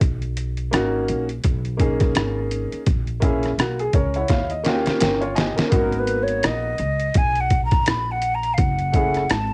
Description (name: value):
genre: hip hop, jazz-hop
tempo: 84 BPM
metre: 4/4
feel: swing 58% on 16ths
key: unclear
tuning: A4 = 442 Hz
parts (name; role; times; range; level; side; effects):
- upright bass; bass; 0.0-9.5 s; Gb1 to Eb2; -29 LUFS; equal; none
- trip hop sampler-style drum kit; drums; 0.0-9.5 s; hi-hat, kick drum, rim click, snare drum; -24 LUFS; equal; cassette tape
- bright upright piano; accompaniment; 0.7-9.2 s; A3 to Ab5; -25 LUFS; equal; cassette tape
- breathy mellow jazz flute; melody; 5.8-9.5 s; Bb4 to Cb6; -25 LUFS; equal; cassette tape
room: moderate studio reverb, RT60 0.5 s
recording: home recording on cassette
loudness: -21 LUFS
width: mono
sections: 0.0-9.5 A section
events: upright piano fill 3.6-5.7; drum fill 4.3-5.7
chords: 0.0 Bmaj7; 2.9 Bbm7b5; 4.3 Eb7; 5.7 Abm9; 8.6 Gbm7